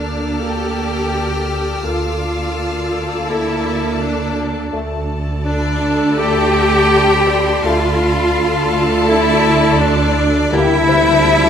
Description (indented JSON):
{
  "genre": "cinematic, suspense film score",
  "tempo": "83 BPM",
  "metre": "4/4",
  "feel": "straight",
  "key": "D minor",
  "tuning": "A4 = 441 Hz",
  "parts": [
    { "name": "warm studio violin section", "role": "melody", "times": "0.0-11.5 s", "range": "D5 to G5", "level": "-23 LUFS", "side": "left 3 dB", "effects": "none" },
    { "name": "mellow clarinet", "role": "second line", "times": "0.0-11.5 s", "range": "D4 to G4", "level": "-20 LUFS", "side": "left 3 dB", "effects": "none" },
    { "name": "warm studio violin section", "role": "second line", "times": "0.0-11.5 s", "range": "D5 to A5", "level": "-25 LUFS", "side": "left 2 dB", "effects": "none" },
    { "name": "rich studio viola section", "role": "accompaniment", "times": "0.0-11.5 s", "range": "G3 to A4", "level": "-22 LUFS", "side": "right 3 dB", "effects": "none" },
    { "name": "warm studio cello section", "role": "bass", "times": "0.0-11.5 s", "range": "D4 to G4", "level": "-19 LUFS", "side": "right 2 dB", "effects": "none" },
    { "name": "warm studio double bass section", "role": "bass", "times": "0.0-11.5 s", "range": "D2", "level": "-22 LUFS", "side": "right 2 dB", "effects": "none" },
    { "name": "sub bass with octave", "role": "drone", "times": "0.0-11.5 s", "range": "D2", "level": "-26 LUFS", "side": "equal", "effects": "none" },
    { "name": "rich studio violin section", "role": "texture", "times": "0.0-11.5 s", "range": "A5 to B6", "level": "-28 LUFS", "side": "left 4 dB", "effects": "none" },
    { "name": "clear French horn section", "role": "sustained chords", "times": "0.4-10.8 s", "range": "A3 to A4", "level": "-23 LUFS", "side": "left 2 dB", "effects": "none" },
    { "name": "concert harp", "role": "texture", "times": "2.9-11.5 s", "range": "C5 to E6", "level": "-26 LUFS", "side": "left 3 dB", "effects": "none" },
    { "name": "timpani", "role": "percussion", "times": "10.5-11.5 s", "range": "D3", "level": "-26 LUFS", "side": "right 1 dB", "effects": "none" }
  ],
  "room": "wet scoring stage reverb, RT60 1.5 s",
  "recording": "none",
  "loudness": "-13 LUFS",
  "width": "side -8 dB against mid",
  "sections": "0.0-11.5 A section",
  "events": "timpani fill 10.5-11.5",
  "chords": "0.0 Gmadd9/D; 4.7 Dm; 10.5 Gmadd9/D",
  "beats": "0.41 1.13 | 1.85 2.58 3.30 4.02 | 4.74 5.47 6.19 6.91 | 7.63 8.36 9.08 9.80 | 10.53 11.25"
}